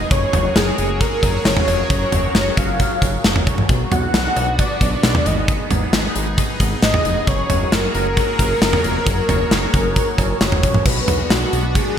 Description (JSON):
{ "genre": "synth-pop", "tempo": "134 BPM", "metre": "4/4", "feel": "straight", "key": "F# major", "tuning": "A4 = 439 Hz", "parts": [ { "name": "wide unison lead", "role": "melody", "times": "0.0-12.0 s", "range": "F#4 to F#5", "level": "-22 LUFS", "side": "equal", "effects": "none" }, { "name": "sweeping resonant pad", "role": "sustained chords", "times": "0.0-12.0 s", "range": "F#3 to C#5", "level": "-26 LUFS", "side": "left 1 dB", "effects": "chorus" }, { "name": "fat analog bass", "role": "bass", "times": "0.0-11.8 s", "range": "E#1 to B1", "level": "-23 LUFS", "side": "equal", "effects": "none" }, { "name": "gated 80s drum kit", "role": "drums", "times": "0.1-11.9 s", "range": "cowbell, crash cymbal, hi-hat, kick drum, snare drum, toms", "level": "-17 LUFS", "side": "equal", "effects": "none" } ], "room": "moderate lush hall reverb, RT60 2.0 s, small room ambience", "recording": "bright 1980s-style digital production", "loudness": "-15 LUFS", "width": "side -9 dB against mid", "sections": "0.0-10.9 A section; 10.9-12.0 A section", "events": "none", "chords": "0.1 F#add9; 3.7 Bm; 5.3 G#m; 7.3 F#add9; 10.9 Bm" }